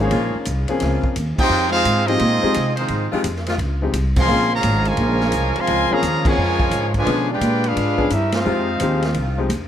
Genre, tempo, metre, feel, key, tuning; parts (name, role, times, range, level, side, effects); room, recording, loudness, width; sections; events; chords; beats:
jazz, big band swing; 173 BPM; 4/4; swing 65% on 8ths; F minor; A4 = 439 Hz
clear trumpet section; melody; 0.0-9.3 s; Ab3 to C6; -21 LUFS; equal
warm trombone section; second line; 0.0-9.3 s; Db3 to G4; -24 LUFS; right 1 dB
clear baby grand piano; accompaniment; 0.0-9.5 s; F3 to Ab4; -24 LUFS; left 4 dB
upright bass; bass; 0.0-9.7 s; Ab1 to C3; -22 LUFS; equal
edgy saxophone section; sustained chords; 0.1-9.4 s; Db3 to B4; -31 LUFS; left 2 dB
vintage drum kit; drums; 0.1-9.6 s; crash cymbal, hi-hat, kick drum, ride cymbal, snare drum; -26 LUFS; equal
light reverb; -16 LUFS; side -10 dB against mid
0.0-9.7 A section
band accent 1.3, 4.1, 6.2, 8.3
0.1 Bbm7; 1.5 Fm7; 4.3 Bbm7; 7.1 Bdim7; 8.5 Fm7
| 0.12 0.47 0.81 1.16 | 1.51 1.85 2.20 2.55 | 2.90 3.24 3.59 3.94 | 4.29 4.63 4.98 5.33 | 5.67 6.02 6.37 6.72 | 7.07 7.41 7.76 8.11 | 8.46 8.80 9.15 9.50